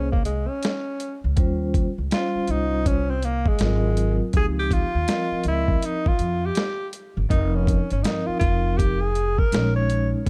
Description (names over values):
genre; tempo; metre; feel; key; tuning
hip hop, jazz-hop; 81 BPM; 4/4; swing 64% on 16ths; Bb dorian; A4 = 441 Hz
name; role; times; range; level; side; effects
breathy tenor saxophone; melody; 0.0-10.1 s; Ab3 to Db5; -29 LUFS; equal; none
vibraphone with soft mallets; accompaniment; 0.0-10.3 s; F3 to Eb5; -30 LUFS; equal; none
upright bass; bass; 0.0-10.3 s; F1 to F2; -26 LUFS; equal; none
dusty soul sampler-style drum kit; drums; 0.1-10.3 s; hi-hat, kick drum, snare drum; -25 LUFS; equal; overdrive
room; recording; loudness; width
small room reverb; dark, warm production; -23 LUFS; mono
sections
0.0-10.3 A section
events
tenor saxophone solo 0.0-10.3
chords
0.0 Bbmadd9 (rootless); 1.4 Eb13; 3.6 Ab13; 4.3 Dbmaj9#11; 7.3 F7sus4; 9.5 Bbm7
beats
0.63 | 1.37 2.11 2.85 3.60 | 4.34 5.08 5.82 6.56 | 7.30 8.04 8.78 9.52 | 10.26